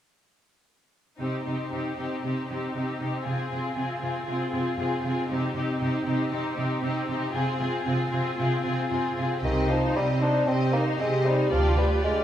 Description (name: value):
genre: quick classical-period movement for symphony orchestra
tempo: 116 BPM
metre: 4/4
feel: rubato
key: C minor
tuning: A4 = 440 Hz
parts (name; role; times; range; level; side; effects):
- warm studio violin section; melody; 1.2-12.2 s; G4 to Eb5; -33 LUFS; left 4 dB; none
- dark studio violin section; second line; 1.2-12.2 s; Eb4 to G4; -31 LUFS; left 1 dB; none
- rich studio viola section; accompaniment; 1.2-12.2 s; C4 to G4; -31 LUFS; right 1 dB; none
- rich studio cello section; bass; 1.2-12.2 s; D2 to C3; -30 LUFS; right 2 dB; none
- warm bassoon; accompaniment; 9.4-12.2 s; Eb3 to D4; -27 LUFS; equal; none
- dark studio double bass section; bass; 9.4-11.9 s; C2 to D2; -27 LUFS; right 1 dB; none
- mellow French horn section; sustained chords; 10.5-12.2 s; G4; -29 LUFS; left 1 dB; none
room: wet recital hall reverb, RT60 1.3 s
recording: recorded in a church or concert hall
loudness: -24 LUFS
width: side -11 dB against mid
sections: 1.2-9.4 A section; 9.4-12.2 B section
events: none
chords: 1.2 Cm; 11.5 G7/D